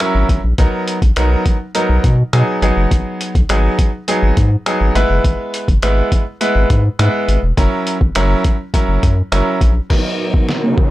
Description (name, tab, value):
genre	dance-pop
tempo	103 BPM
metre	4/4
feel	straight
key	unclear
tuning	A4 = 440 Hz
part	bright baby grand piano	accompaniment	0.0-10.7 s	F#3 to B4	-18 LUFS	right 1 dB	sidechain pumping, low-pass filter
part	lo-fi sampler-style drum kit	drums	0.0-10.9 s	crash cymbal, finger snaps, hi-hat, kick drum, snare drum	-16 LUFS	equal	overdrive
part	round analog bass	bass	0.1-9.8 s	E1 to B2	-14 LUFS	equal	sidechain pumping
part	supersaw chords	sustained chords	9.9-10.9 s	F#3 to A#4	-22 LUFS	right 1 dB	sidechain pumping, low-pass filter
part	tight sequenced synth	arpeggios	9.9-10.7 s	A#3 to A#5	-20 LUFS	right 1 dB	chorus, sidechain pumping, low-pass filter
part	riser	sound effects	10.3-10.9 s	none	-25 LUFS	right 1 dB	none
room	light reverb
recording	dry, gritty hardware recording, transformer saturation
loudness	-13 LUFS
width	side -16 dB against mid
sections	0.0-9.9 A section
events	drum fill 9.9-10.9; riser 10.3-10.9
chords	0.0 F#7; 0.6 Bmaj7; 2.6 G#m7; 5.0 E; 7.6 F#7; 9.9 Bmaj7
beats	0.00 | 0.59 1.17 1.75 2.33 | 2.92 3.50 4.08 4.66 | 5.25 5.83 6.41 6.99 | 7.58 8.16 8.74 9.32 | 9.91 10.49